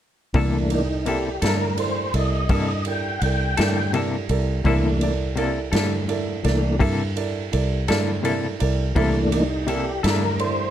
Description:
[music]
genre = slow blues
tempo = 56 BPM (dotted quarters)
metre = 12/8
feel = straight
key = C mixolydian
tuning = A4 = 440 Hz
[part]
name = dark grand piano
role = accompaniment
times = 0.3-10.7 s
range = E4 to E5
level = -28 LUFS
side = right 7 dB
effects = none
[part]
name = semi-hollow electric guitar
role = accompaniment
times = 0.3-10.3 s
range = C3 to A4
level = -24 LUFS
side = left 6 dB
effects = tremolo
[part]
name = tonewheel organ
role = sustained chords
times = 0.3-10.7 s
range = E3 to G5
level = -25 LUFS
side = left 1 dB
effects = slow rotary speaker, chorus vibrato
[part]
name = fingered electric bass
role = bass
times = 0.3-10.7 s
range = C2 to G2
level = -24 LUFS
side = equal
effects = none
[part]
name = swinging big-band drum kit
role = drums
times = 0.3-10.6 s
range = kick drum, ride cymbal, snare drum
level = -28 LUFS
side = right 1 dB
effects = none
[sound]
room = little or no reverb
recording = dark, warm production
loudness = -20 LUFS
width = side -10 dB against mid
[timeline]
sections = 0.3-10.7 A section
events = tonewheel organ solo 0.3-10.7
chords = 0.3 C13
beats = | 0.34 1.42 2.50 3.58 | 4.65 5.73 6.81 7.88 | 8.96 10.04

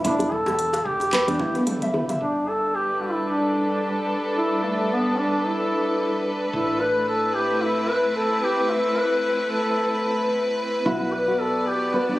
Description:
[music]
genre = organic downtempo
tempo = 111 BPM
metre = 4/4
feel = swing 56% on 16ths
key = unclear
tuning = A4 = 440 Hz
[part]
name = mellow duduk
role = melody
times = 0.0-12.2 s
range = A3 to B4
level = -24 LUFS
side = equal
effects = ping-pong delay
[part]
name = nylon-string guitar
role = arpeggios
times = 0.0-2.2, 10.9-12.2 s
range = B3 to E5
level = -25 LUFS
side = equal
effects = ping-pong delay
[part]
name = woody fretless electric bass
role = bass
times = 0.0-12.2 s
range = E1 to E2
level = -36 LUFS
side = equal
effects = sidechain pumping
[part]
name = organic electronic drum kit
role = drums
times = 0.0-2.2 s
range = cabasa, congas, handclaps, hi-hat, toms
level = -29 LUFS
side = equal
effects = small room reverb
[part]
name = djembe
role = percussion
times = 0.2-2.2 s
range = none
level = -31 LUFS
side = left 1 dB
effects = none
[part]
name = electronic kick drum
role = drums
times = 0.9-1.5 s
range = none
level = -39 LUFS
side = equal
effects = small room reverb
[part]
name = warm chamber string section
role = sustained chords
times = 2.2-12.2 s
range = G3 to D5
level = -24 LUFS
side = equal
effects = sidechain pumping, low-pass filter
[sound]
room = light reverb, small room ambience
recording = recorded on a phone in the room, studio ambience, compression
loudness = -20 LUFS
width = side -17 dB against mid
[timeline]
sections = 0.0-2.2 A section; 2.2-12.2 B section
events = drum fill 1.4-2.2; break 1.7-2.2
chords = 0.0 Em; 2.2 G; 6.5 Am; 10.9 Bm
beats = | 0.05 0.59 1.13 1.67 | 2.21 2.75 3.29 3.83 | 4.37 4.91 5.45 5.99 | 6.53 7.07 7.62 8.15 | 8.70 9.24 9.78 10.32 | 10.86 11.40 11.94

